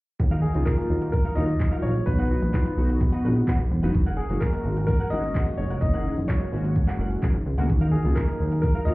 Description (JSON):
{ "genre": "dance-pop", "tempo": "128 BPM", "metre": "4/4", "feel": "straight", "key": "unclear", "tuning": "A4 = 440 Hz", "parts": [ { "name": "direct-recorded clean electric guitar", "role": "riff", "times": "0.2-8.9 s", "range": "C#4 to F#5", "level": "-37 LUFS", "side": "right 2 dB", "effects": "ensemble chorus" }, { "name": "chorused synth bass", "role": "bass", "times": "0.2-8.9 s", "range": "E1 to D#2", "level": "-24 LUFS", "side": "equal", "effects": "sidechain pumping" }, { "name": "deep house drum kit", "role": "drums", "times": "0.2-8.9 s", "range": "handclaps, hi-hat, kick drum", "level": "-24 LUFS", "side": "equal", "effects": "none" }, { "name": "warm concert grand piano", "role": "melody", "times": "0.4-8.9 s", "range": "G#4 to D#5", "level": "-31 LUFS", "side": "left 1 dB", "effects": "digital delay" }, { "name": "chorused polysynth", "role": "accompaniment", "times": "0.5-8.9 s", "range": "F#3 to G#4", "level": "-28 LUFS", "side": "left 1 dB", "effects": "sidechain pumping" } ], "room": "little or no reverb", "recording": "heard muffled through a wall, club ambience, EQ", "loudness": "-21 LUFS", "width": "side -21 dB against mid", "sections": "0.2-8.9 A section", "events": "none", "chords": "0.2 D#madd9; 2.1 B; 3.9 F#add9; 7.7 D#madd9", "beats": "| 0.20 0.67 1.13 1.60 | 2.07 2.54 3.01 3.48 | 3.95 4.42 4.88 5.35 | 5.82 6.29 6.76 7.23 | 7.70 8.17 8.63" }